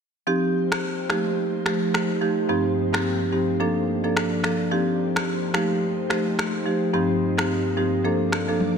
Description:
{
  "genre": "afrobeats",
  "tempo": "108 BPM",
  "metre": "4/4",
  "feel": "swing 58% on 16ths",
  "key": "unclear",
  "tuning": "A4 = 441 Hz",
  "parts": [
    { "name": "marimba with medium mallets", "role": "accompaniment", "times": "0.3-8.8 s", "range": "G2 to A4", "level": "-22 LUFS", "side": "right 1 dB", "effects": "none" },
    { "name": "glassy FM pad", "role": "sustained chords", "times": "0.5-8.8 s", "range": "G2 to D5", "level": "-29 LUFS", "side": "left 2 dB", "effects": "ensemble chorus, built-in reverb" },
    { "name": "afro-pop drum kit", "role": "drums", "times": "0.7-8.8 s", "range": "finger snaps, rim click, toms", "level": "-28 LUFS", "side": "left 1 dB", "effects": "none" }
  ],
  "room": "moderate lush hall reverb, RT60 2.3 s",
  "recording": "none",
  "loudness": "-21 LUFS",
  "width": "side -6 dB against mid",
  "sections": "0.3-8.8 A section",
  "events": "drum fill 8.6",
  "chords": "0.3 Eb69; 1.1 F9; 2.5 Eb69/G; 3.6 Bbmaj7; 4.7 Eb69; 5.5 F9; 6.9 Eb69/G; 8.0 Bbmaj7"
}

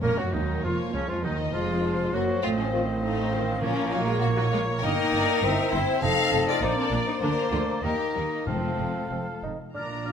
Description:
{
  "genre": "quick classical-period movement for symphony orchestra",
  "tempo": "100 BPM",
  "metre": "2/4",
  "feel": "rubato",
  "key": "Bb minor",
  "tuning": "A4 = 440 Hz",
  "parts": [
    { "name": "mellow hollow concert flute", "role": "second line", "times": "0.0-10.1 s", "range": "Db4 to F6", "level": "-34 LUFS", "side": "left 3 dB", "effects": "none" },
    { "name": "rich studio violin section", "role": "second line", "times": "0.0-10.1 s", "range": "C4 to F5", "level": "-30 LUFS", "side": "left 4 dB", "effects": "none" },
    { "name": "warm oboe", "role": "second line", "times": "0.0-10.1 s", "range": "Db4 to F5", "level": "-34 LUFS", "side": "right 1 dB", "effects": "none" },
    { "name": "mellow bassoon", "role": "accompaniment", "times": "0.0-10.1 s", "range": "Db3 to Eb4", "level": "-32 LUFS", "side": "right 2 dB", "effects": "none" },
    { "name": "rich chamber viola section", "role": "accompaniment", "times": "0.0-10.1 s", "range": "Eb3 to A4", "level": "-32 LUFS", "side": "equal", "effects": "none" },
    { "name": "dark French horn section", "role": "sustained chords", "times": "0.0-10.1 s", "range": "Db3 to F4", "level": "-34 LUFS", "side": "left 6 dB", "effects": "none" },
    { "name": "warm chamber cello section", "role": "bass", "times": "0.0-10.1 s", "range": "Db2 to Eb3", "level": "-32 LUFS", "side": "right 2 dB", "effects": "none" },
    { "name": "warm chamber double bass section", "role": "bass", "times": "0.0-10.1 s", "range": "F1 to Eb2", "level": "-32 LUFS", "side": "right 4 dB", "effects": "none" },
    { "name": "rich chamber violin section", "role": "melody", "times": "0.6-10.1 s", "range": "A4 to Bb5", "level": "-36 LUFS", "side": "left 6 dB", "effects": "none" },
    { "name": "timpani", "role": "percussion", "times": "3.6-4.5, 8.5-10.1 s", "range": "F2 to Bb2", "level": "-36 LUFS", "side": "left 2 dB", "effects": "none" }
  ],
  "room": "moderate concert hall reverb, RT60 1.8 s",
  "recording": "close, detailed microphones",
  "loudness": "-23 LUFS",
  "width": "side -7 dB against mid",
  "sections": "0.0-9.8 A section",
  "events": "none",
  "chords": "0.0 Bbm; 1.2 Cdim; 2.4 F7/A; 3.6 Bbm; 4.8 Eb/G; 5.4 C7/G; 6.0 F7; 6.6 Bb; 7.8 Eb; 8.5 F"
}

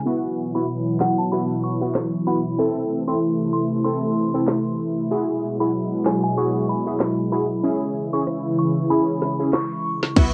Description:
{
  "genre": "dancehall",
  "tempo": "95 BPM",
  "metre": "4/4",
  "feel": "swing 56% on 16ths",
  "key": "unclear",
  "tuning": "A4 = 440 Hz",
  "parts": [
    { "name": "warm analog pad", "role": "sustained chords", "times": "0.0-10.1 s", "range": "B2 to E4", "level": "-25 LUFS", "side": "equal", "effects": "chorus" },
    { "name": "synth brass stab", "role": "accompaniment", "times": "0.1-10.3 s", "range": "B3 to A4", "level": "-26 LUFS", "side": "equal", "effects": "chorus" },
    { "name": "glassy synth bell", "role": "melody", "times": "0.6-10.0 s", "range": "F#5 to C#6", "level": "-32 LUFS", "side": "equal", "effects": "chorus, cassette tape, analog delay" },
    { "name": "island pop drum kit", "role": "drums", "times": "1.0-10.3 s", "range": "crash cymbal, handclaps, hi-hat, kick drum, rim click, snare drum", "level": "-24 LUFS", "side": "equal", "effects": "cassette tape" },
    { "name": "short 808-style bass", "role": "bass", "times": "10.2-10.3 s", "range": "B1", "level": "-20 LUFS", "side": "equal", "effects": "none" }
  ],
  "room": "moderate studio ambience, RT60 0.5 s",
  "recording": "home recording on cassette, low-pass filter",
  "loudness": "-22 LUFS",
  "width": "mono",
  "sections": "0.1-10.2 A section",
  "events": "filter sweep 0.1-10.2",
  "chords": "0.1 Bsus4; 2.6 Am; 5.1 Eadd9; 7.6 C#m"
}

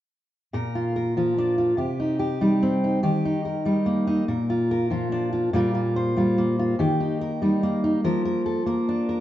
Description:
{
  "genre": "folk",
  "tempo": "48 BPM (dotted quarters)",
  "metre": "6/8",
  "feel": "straight",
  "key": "Bb major",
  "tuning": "A4 = 440 Hz",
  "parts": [
    { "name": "fingerpicked steel-string acoustic guitar", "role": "accompaniment", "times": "0.5-9.2 s", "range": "Bb2 to C5", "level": "-21 LUFS", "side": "equal", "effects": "none" }
  ],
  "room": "wet stone room reverb, RT60 1.4 s",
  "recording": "band playing live in one room, nothing above 7.7 kHz",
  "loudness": "-21 LUFS",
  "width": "side -13 dB against mid",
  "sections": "0.5-9.2 A section",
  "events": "none",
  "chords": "0.5 Bb; 1.8 Cm; 3.0 Eb; 4.3 Bb; 5.5 Gm7/Bb; 6.8 Eb; 8.0 Bb/F"
}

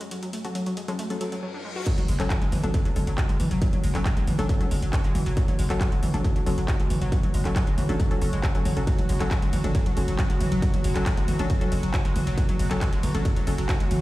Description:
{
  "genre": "driving peak-time techno",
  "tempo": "137 BPM",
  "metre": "4/4",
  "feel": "straight",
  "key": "F# minor",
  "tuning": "A4 = 437 Hz",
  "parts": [
    { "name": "analog pluck", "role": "riff", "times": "0.0-14.0 s", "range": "E3 to F#4", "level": "-32 LUFS", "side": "equal", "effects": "chorus, overdrive, sidechain pumping, digital delay" },
    { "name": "deep dark ambient pad", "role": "drone", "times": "0.0-14.0 s", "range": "F#3 to F#4", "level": "-35 LUFS", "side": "equal", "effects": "chorus, built-in reverb, sidechain pumping" },
    { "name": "techno drum kit", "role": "drums", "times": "0.0-14.0 s", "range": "crash cymbal, handclaps, hi-hat, ride cymbal, toms", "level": "-32 LUFS", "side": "right 1 dB", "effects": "sidechain pumping on hats, sidechain pumping on cymbals, sidechain pumping on toms" },
    { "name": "filtered dub chord stab", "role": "stabs", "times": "0.4-13.7 s", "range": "F#3 to A4", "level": "-34 LUFS", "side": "left 2 dB", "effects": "chorus, vintage 12-bit sampler grit, sidechain pumping, tape echo" },
    { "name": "reverse cymbal", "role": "sound effects", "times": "1.2-1.9 s", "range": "none", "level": "-42 LUFS", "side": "left 5 dB", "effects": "none" },
    { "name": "electronic kick drum", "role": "drums", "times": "1.9-13.8 s", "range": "none", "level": "-25 LUFS", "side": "equal", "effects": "distortion" },
    { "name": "growling 808-style bass", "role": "bass", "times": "2.1-14.0 s", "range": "F#1", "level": "-27 LUFS", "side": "equal", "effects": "overdrive, sidechain pumping, low-pass filter" }
  ],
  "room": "little or no reverb",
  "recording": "played on a big sound system in a bare room, large studio reverb",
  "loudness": "-22 LUFS",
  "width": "side -17 dB against mid",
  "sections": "0.0-1.9 A section; 1.9-14.0 B section",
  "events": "reverse cymbal 1.2-1.9; break 1.4-1.9; drop 1.9-14.0",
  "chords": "0.0 F#m"
}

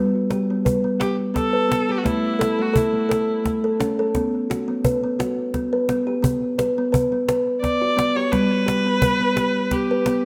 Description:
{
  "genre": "world meditative, meditative tuned percussion",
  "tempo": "86 BPM",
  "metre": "3/4",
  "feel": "swing 55% on 16ths",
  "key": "unclear",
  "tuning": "A4 = 442 Hz",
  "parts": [
    { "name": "kalimba", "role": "arpeggios", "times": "0.0-10.2 s", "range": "G3 to B4", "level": "-23 LUFS", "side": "equal", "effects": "tape echo" },
    { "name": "cajon", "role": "percussion", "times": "0.3-10.2 s", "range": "none", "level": "-27 LUFS", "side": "equal", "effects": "none" },
    { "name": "rich viola", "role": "melody", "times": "1.0-3.5, 7.6-10.2 s", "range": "E4 to D5", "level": "-25 LUFS", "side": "equal", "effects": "tape echo" }
  ],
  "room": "wet echo chamber reverb, RT60 1.3 s",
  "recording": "none",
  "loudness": "-21 LUFS",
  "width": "mono",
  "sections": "0.0-10.2 A section",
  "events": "none",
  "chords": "0.0 G; 2.0 A5; 4.1 B5; 8.3 G"
}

